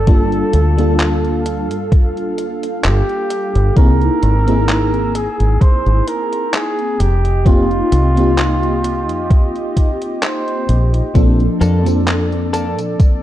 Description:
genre	vaporwave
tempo	65 BPM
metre	4/4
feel	swing 54% on 16ths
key	unclear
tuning	A4 = 441 Hz
part	breathy flugelhorn	melody	0.0-11.1 s	F4 to C5	-22 LUFS	right 1 dB	vintage 12-bit sampler grit, tape echo
part	FM electric piano with soft pad layer	accompaniment	0.0-13.2 s	F3 to A4	-19 LUFS	equal	tremolo, ensemble chorus, analog delay
part	warbly tape-like pad	sustained chords	0.0-13.2 s	G4 to E6	-27 LUFS	right 2 dB	chorus, built-in reverb, vintage 12-bit sampler grit
part	fingered electric bass	bass	0.0-13.0 s	F1 to Bb2	-15 LUFS	equal	none
part	detuned 8-bit digital drum machine	drums	0.1-13.2 s	handclaps, hi-hat, tambourine	-22 LUFS	equal	overdrive, studio reverb
part	electronic kick drum	drums	0.1-13.2 s	none	-11 LUFS	equal	overdrive, studio reverb
part	direct-recorded clean electric guitar	riff	11.6-12.8 s	Bb3 to A4	-25 LUFS	left 2 dB	lush chorus, analog delay
room	light reverb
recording	dark, warm production, cassette tape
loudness	-13 LUFS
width	side -13 dB against mid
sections	0.0-13.2 A section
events	none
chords	0.1 Gm9; 3.8 C7alt; 7.0 F9sus4; 11.2 Gm9 (rootless)

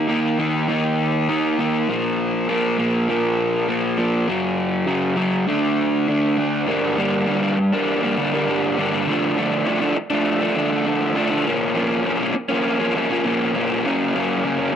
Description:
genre	rock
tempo	100 BPM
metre	4/4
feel	straight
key	unclear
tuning	A4 = 440 Hz
part	raw garage guitar	solo	0.0-14.8 s	F#2 to Eb4	-18 LUFS	equal	overdrive, cassette tape, analog delay
room	moderate small room reverb, RT60 0.6 s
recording	home recording on cassette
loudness	-18 LUFS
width	side -8 dB against mid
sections	0.0-6.7 A section; 6.7-14.8 B section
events	none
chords	0.0 Eb5; 1.9 Bb5; 4.3 F#5; 5.5 D5; 6.7 Gm; 9.1 Dm; 11.5 Bbm; 13.8 F#

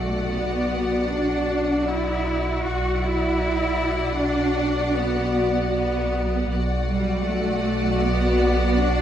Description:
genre	cinematic, suspense film score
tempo	78 BPM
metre	5/4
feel	straight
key	B minor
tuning	A4 = 439 Hz
part	warm symphonic violin section	melody	0.0-9.0 s	F#5	-32 LUFS	left 6 dB	none
part	clear symphonic violin section	second line	0.0-9.0 s	D5	-33 LUFS	left 2 dB	none
part	clear symphonic viola section	accompaniment	0.0-9.0 s	F#4	-29 LUFS	left 1 dB	none
part	warm French horn section	sustained chords	0.0-9.0 s	F#4 to D5	-28 LUFS	left 2 dB	none
part	bright symphonic cello section	bass	0.0-9.0 s	G3 to F#4	-25 LUFS	right 1 dB	none
part	rich symphonic double bass section	bass	0.0-9.0 s	B1	-26 LUFS	right 1 dB	none
part	impact	sound effects	0.0-2.6 s	none	-45 LUFS	left 4 dB	none
room	wet scoring stage reverb, RT60 2.1 s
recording	dark, warm production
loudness	-20 LUFS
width	side -10 dB against mid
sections	0.0-9.0 A section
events	impact 0.0-2.6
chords	0.0 Bm7

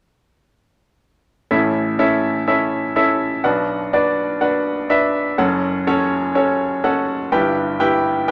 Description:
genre	pop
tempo	124 BPM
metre	4/4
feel	swing 56% on 16ths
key	A mixolydian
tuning	A4 = 440 Hz
part	bright grand piano	solo	1.5-8.3 s	F#1 to G5	-18 LUFS	equal	none
room	moderate small room reverb, RT60 0.5 s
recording	none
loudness	-18 LUFS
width	mono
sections	1.5-8.3 A section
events	none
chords	1.5 A; 3.4 Bm; 5.4 F#m; 7.3 Em/G

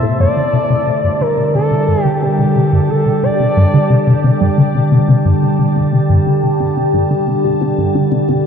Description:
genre	ambient, sequencer-driven space music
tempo	89 BPM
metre	4/4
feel	straight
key	unclear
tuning	A4 = 440 Hz
part	expressive portamento lead	melody	0.0-4.6 s	G4 to E5	-19 LUFS	equal	chorus, ping-pong delay
part	evolving wavetable pad	sustained chords	0.0-8.5 s	B2 to A5	-15 LUFS	right 1 dB	phaser, built-in reverb
part	resonant blip pluck	riff	0.0-8.4 s	G2 to D3	-15 LUFS	left 1 dB	phaser, ping-pong delay
room	moderate huge ambient reverb, RT60 7.6 s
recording	dark, warm production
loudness	-11 LUFS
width	side -7 dB against mid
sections	0.2-8.5 A section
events	none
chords	0.2 Gsus2

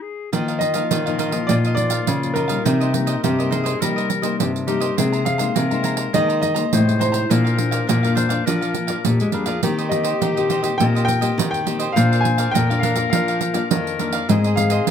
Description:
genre	samba and choro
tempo	103 BPM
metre	4/4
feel	straight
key	Eb major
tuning	A4 = 439 Hz
part	bright clarinet	second line	0.0-14.9 s	Eb4 to C5	-26 LUFS	left 6 dB	none
part	cavaquinho	accompaniment	0.3-14.9 s	D4 to Bb5	-28 LUFS	right 6 dB	none
part	nylon-string guitar	accompaniment	0.3-14.9 s	F2 to G4	-26 LUFS	left 6 dB	none
part	nylon-string guitar	bass	0.3-14.9 s	Ab2 to Ab3	-21 LUFS	left 1 dB	none
part	pandeiro	percussion	0.3-14.9 s	none	-24 LUFS	right 10 dB	none
part	clear baby grand piano	melody	0.6-14.9 s	Bb4 to Ab5	-24 LUFS	equal	none
room	light reverb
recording	close, detailed microphones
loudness	-17 LUFS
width	side -8 dB against mid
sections	0.3-14.9 A section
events	band accent 0.0-0.3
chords	0.3 Ebsus2; 2.7 Cm7; 5.0 Abadd9/C; 7.3 Bb; 9.6 Eb6; 12.0 Bb; 14.3 Ab

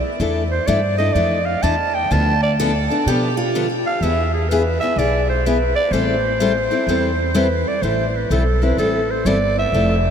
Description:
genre	acoustic string swing (jazz manouche)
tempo	126 BPM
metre	4/4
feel	swing 65% on 8ths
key	A minor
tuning	A4 = 440 Hz
part	picked steel-string acoustic guitar	accompaniment	0.2-10.0 s	D3 to A4	-21 LUFS	left 3 dB	none
part	upright bass	bass	0.2-10.1 s	F1 to B2	-21 LUFS	right 1 dB	none
part	growling clarinet	melody	0.5-10.1 s	G#4 to A5	-20 LUFS	right 1 dB	ping-pong delay
part	picked steel-string acoustic guitar	second line	2.6-3.7 s	F4 to A4	-26 LUFS	right 2 dB	wide subtle chorus, ping-pong delay
room	wet huge ambient reverb, RT60 7.8 s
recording	dreamy mix soaked in reverb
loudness	-16 LUFS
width	side -8 dB against mid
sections	0.0-7.8 A section; 7.8-10.1 B section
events	clarinet solo 0.0-7.8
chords	0.2 E7sus4; 2.1 Bm7b5/D; 4.0 E; 5.9 Am7

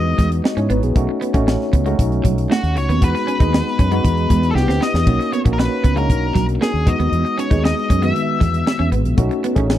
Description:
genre	polished 1980s jazz-funk pop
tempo	117 BPM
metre	4/4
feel	straight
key	B major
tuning	A4 = 441 Hz
part	octave-fuzz lead guitar	melody	0.0-8.9 s	F#4 to E5	-23 LUFS	left 2 dB	distortion
part	tine electric piano	accompaniment	0.0-9.8 s	D#3 to D#5	-21 LUFS	left 1 dB	overdrive, fast stereo tremolo, lush chorus
part	mellow fretless electric bass	bass	0.0-9.8 s	G#1 to G#2	-19 LUFS	equal	none
part	electric guitar at the edge of break-up	riff	0.2-9.7 s	F#3 to D#4	-26 LUFS	right 5 dB	lush chorus
part	crisp fusion drum kit	drums	0.2-9.8 s	crash cymbal, hi-hat, kick drum, snare drum	-18 LUFS	equal	none
room	studio ambience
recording	dry, close 1970s-style studio recording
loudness	-15 LUFS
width	side -12 dB against mid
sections	0.0-9.8 A section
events	drum fill 4.6-5.1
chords	0.0 Emaj7; 1.0 B7; 3.0 Emaj7; 4.6 Cmaj7; 5.1 Bmaj7; 6.9 Emaj7; 9.2 B7

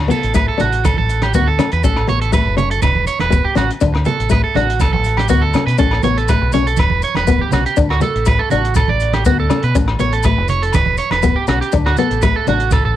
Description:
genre	highlife guitar band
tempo	121 BPM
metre	4/4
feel	straight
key	D major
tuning	A4 = 440 Hz
part	nylon-string guitar	accompaniment	0.0-12.7 s	A3 to D4	-19 LUFS	left 7 dB	cassette tape
part	deep dub fingered electric bass	bass	0.0-13.0 s	E1 to B2	-19 LUFS	equal	none
part	electric guitar at the edge of break-up	arpeggios	0.1-13.0 s	F#4 to D5	-18 LUFS	right 7 dB	cassette tape, analog delay
part	compact cocktail drum kit	drums	0.1-12.8 s	hi-hat, kick drum, rim click	-19 LUFS	equal	none
part	congas	percussion	0.1-12.8 s	none	-24 LUFS	right 6 dB	none
part	maracas	percussion	0.1-12.8 s	none	-34 LUFS	left 10 dB	none
part	agogo bells	percussion	0.4-12.9 s	none	-28 LUFS	left 7 dB	none
room	small room ambience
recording	home recording on cassette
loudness	-13 LUFS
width	side -12 dB against mid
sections	0.0-13.0 A section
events	none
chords	0.0 D; 1.8 A; 2.8 E5; 3.8 D; 5.8 A; 6.8 Em; 7.8 D; 9.8 A; 10.7 Em; 11.7 D

